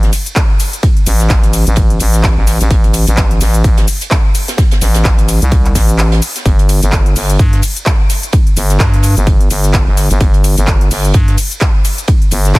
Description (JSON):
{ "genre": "bass house", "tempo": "128 BPM", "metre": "4/4", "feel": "swing 58% on 16ths", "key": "unclear", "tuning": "A4 = 439 Hz", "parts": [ { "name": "growling FM bass", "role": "bass", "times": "0.0-12.6 s", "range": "G1 to G2", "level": "-12 LUFS", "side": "equal", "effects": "overdrive, sidechain pumping" }, { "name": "big-room dance drum kit", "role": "drums", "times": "0.0-12.6 s", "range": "handclaps, hi-hat, ride cymbal, shaker", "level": "-19 LUFS", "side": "left 1 dB", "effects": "overdrive" }, { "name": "open jazz drum kit", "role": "drums", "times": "0.0-12.6 s", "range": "hi-hat, snare drum", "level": "-26 LUFS", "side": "right 3 dB", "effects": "sidechain pumping on hats, high-pass filter on hats, high-pass filter on snare, high-pass filter on room" }, { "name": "electronic kick drum", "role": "drums", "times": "0.4-12.6 s", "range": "none", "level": "-11 LUFS", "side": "equal", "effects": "overdrive" } ], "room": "studio ambience", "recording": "dense, heavily limited modern master", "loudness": "-9 LUFS", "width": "side -22 dB against mid", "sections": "0.0-12.6 A section", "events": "break 6.0-6.5", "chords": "none" }